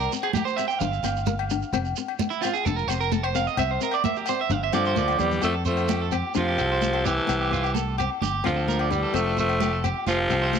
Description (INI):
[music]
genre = highlife guitar band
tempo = 130 BPM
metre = 4/4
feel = straight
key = F major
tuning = A4 = 440 Hz
[part]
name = flamenco guitar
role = accompaniment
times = 0.0-10.6 s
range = A3 to D4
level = -31 LUFS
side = left 11 dB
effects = none
[part]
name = electric guitar at the edge of break-up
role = arpeggios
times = 0.0-10.6 s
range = E4 to G5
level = -28 LUFS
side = right 8 dB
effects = tape echo
[part]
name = fingered electric bass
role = bass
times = 0.0-10.6 s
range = F1 to G2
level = -28 LUFS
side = equal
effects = none
[part]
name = shekere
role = percussion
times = 0.0-10.6 s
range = none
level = -34 LUFS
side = right 5 dB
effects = none
[part]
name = congas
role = percussion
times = 0.1-10.6 s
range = none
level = -32 LUFS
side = right 12 dB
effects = none
[part]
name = agogo bells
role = percussion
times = 0.2-10.4 s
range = none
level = -33 LUFS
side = left 13 dB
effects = none
[part]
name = raspy alto saxophone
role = melody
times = 4.7-10.6 s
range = E3 to A3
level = -25 LUFS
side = equal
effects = none
[part]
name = growling tenor saxophone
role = second line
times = 4.7-10.6 s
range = C3 to F3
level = -33 LUFS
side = left 9 dB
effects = none
[sound]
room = moderate echo chamber reverb, RT60 1.4 s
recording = 1960s-style stereo with parts hard left and right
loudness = -22 LUFS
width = side -7 dB against mid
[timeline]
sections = 0.0-5.4 A section; 5.4-10.6 B section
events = clean electric guitar solo 0.0-5.4; drum fill 5.0-5.4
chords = 0.0 C6; 0.8 Gm7; 1.7 F; 3.6 C7; 4.5 G5; 5.0 Csus2; 5.4 Fadd9; 7.3 C; 8.2 Gm7; 9.1 Fadd9